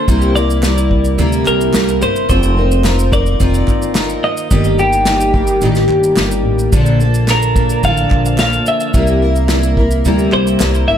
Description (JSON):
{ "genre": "acoustic pop", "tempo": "108 BPM", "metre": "4/4", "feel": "straight", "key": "unclear", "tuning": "A4 = 439 Hz", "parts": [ { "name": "twelve-string electric guitar", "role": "melody", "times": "0.0-11.0 s", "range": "G4 to F5", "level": "-18 LUFS", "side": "left 1 dB", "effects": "spring reverb, tape echo" }, { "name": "picked steel-string acoustic guitar", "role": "accompaniment", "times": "0.0-11.0 s", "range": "G2 to Bb4", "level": "-16 LUFS", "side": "left 1 dB", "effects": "double-tracked left and right" }, { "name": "tonewheel organ", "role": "sustained chords", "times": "0.0-11.0 s", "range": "C3 to A5", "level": "-25 LUFS", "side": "equal", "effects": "stopped rotary speaker" }, { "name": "upright bass", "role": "bass", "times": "0.1-11.0 s", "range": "F1 to D2", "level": "-16 LUFS", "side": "equal", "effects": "none" }, { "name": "unplugged drum kit", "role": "drums", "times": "0.1-10.9 s", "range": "kick drum, shaker, snare drum", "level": "-17 LUFS", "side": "equal", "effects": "none" }, { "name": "group handclap", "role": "percussion", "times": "0.6-10.7 s", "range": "none", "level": "-30 LUFS", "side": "right 5 dB", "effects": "none" } ], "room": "moderate studio reverb, RT60 0.5 s", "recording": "none", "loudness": "-11 LUFS", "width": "side -9 dB against mid", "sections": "0.0-11.0 A section", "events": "none", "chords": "0.1 C7; 2.3 F7sus4; 4.5 Eb/G; 6.7 Bbmaj7; 8.9 C7", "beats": "| 0.07 0.63 1.18 1.74 | 2.29 2.85 3.40 3.96 | 4.51 5.06 5.62 6.17 | 6.73 7.28 7.83 8.39 | 8.94 9.50 10.05 10.61" }